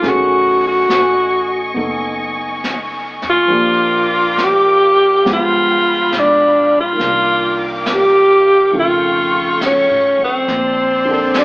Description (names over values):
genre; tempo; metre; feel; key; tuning
jazz ballad; 69 BPM; 4/4; swing 69% on 8ths; unclear; A4 = 439 Hz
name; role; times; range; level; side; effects
breathy tenor saxophone; melody; 0.0-11.4 s; C4 to G4; -12 LUFS; equal; none
warm grand piano; accompaniment; 0.0-11.4 s; C#3 to A4; -22 LUFS; right 1 dB; none
warm symphonic string section; sustained chords; 0.0-11.4 s; Ab3 to D6; -22 LUFS; equal; none
upright bass; bass; 0.0-11.4 s; F#1 to G#2; -30 LUFS; equal; none
jazz brush drum kit; drums; 0.0-11.4 s; brushed snare drum, hi-hat, snare drum; -25 LUFS; equal; none
room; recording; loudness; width
moderate studio ambience, RT60 0.5 s; band playing live in one room, AM radio sound; -11 LUFS; side -24 dB against mid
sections
0.0-11.4 A section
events
none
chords
0.0 B13; 3.5 Bb6; 5.3 G7b9; 7.0 Cm11; 8.7 F7alt; 10.5 Bbmaj9